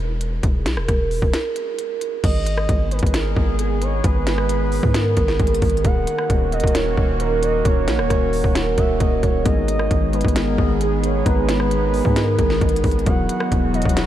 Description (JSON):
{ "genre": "hip hop, trap", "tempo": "133 BPM", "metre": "4/4", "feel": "half-time", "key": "G# minor", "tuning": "A4 = 436 Hz", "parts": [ { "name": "concert harp", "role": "melody", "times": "0.0-14.1 s", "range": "F#4 to D#5", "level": "-25 LUFS", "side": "right 2 dB", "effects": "low-pass filter, tape echo" }, { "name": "long sustained 808-style bass", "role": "bass", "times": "0.0-14.1 s", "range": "D#1 to G#2", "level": "-22 LUFS", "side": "equal", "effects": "none" }, { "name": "trap drum kit", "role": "drums", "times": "0.2-14.1 s", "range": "crash cymbal, hi-hat, kick drum, rim click, snare drum", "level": "-21 LUFS", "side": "equal", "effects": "none" }, { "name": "gliding portamento lead", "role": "second line", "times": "2.2-14.1 s", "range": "G#4 to F#5", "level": "-26 LUFS", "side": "right 4 dB", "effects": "chorus, tape echo" }, { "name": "warbly tape-like pad", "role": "sustained chords", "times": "2.2-14.1 s", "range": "D#3 to G#4", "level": "-26 LUFS", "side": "right 2 dB", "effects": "chorus, built-in reverb" }, { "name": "mellow tine electric piano", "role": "accompaniment", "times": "9.4-14.1 s", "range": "F#3 to B4", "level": "-26 LUFS", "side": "left 5 dB", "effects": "phaser, low-pass filter" } ], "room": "moderate huge ambient reverb, RT60 8.5 s", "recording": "dreamy mix soaked in reverb", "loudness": "-17 LUFS", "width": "side -12 dB against mid", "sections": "0.0-2.2 A section; 2.2-14.1 B section", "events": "break 0.0-2.2", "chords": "0.0 E5; 2.2 G#m; 5.8 D#m7; 9.5 G#m; 13.1 Esus2" }